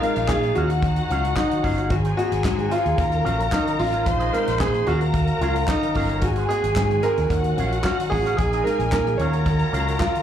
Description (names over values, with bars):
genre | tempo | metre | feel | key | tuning
disco | 111 BPM | 4/4 | straight | Eb dorian | A4 = 435 Hz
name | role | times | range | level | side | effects
warm grand piano | melody | 0.0-10.2 s | Eb4 to Db5 | -24 LUFS | right 1 dB | plate reverb, slapback echo
clear studio string section | second line | 0.0-10.2 s | F4 to C6 | -27 LUFS | left 1 dB | plate reverb, slapback echo
electric guitar with an envelope filter | accompaniment | 0.0-10.2 s | Eb4 to F5 | -33 LUFS | right 5 dB | plate reverb, slapback echo
mellow tine electric piano | accompaniment | 0.0-10.2 s | Ab2 to Gb4 | -32 LUFS | left 3 dB | medium stereo tremolo, plate reverb, slapback echo
muted French horn section | sustained chords | 0.0-10.2 s | Eb3 to F5 | -34 LUFS | equal | plate reverb
damped 70s drum kit | drums | 0.0-10.2 s | handclaps, hi-hat, kick drum, snare drum | -27 LUFS | equal | none
fingered electric bass | bass | 0.2-10.0 s | G1 to Bb2 | -24 LUFS | equal | none
group handclap | percussion | 0.3-10.1 s | none | -36 LUFS | left 2 dB | none
room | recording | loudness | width
light reverb | live gig heard through the venue's PA, club reverb | -19 LUFS | side -9 dB against mid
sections
0.0-10.2 A section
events
none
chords
0.0 Bb7sus4; 0.6 Ebm9; 1.9 Ab7; 3.0 Ebm9; 4.1 Bb7sus4; 4.9 Ebm9; 6.2 Ab7; 7.3 Ebm9; 8.4 Bb7sus4; 9.2 Ebm9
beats
0.29 0.83 1.37 | 1.91 2.44 2.98 3.52 | 4.06 4.60 5.14 5.68 | 6.22 6.76 7.30 7.84 | 8.38 8.92 9.46 10.01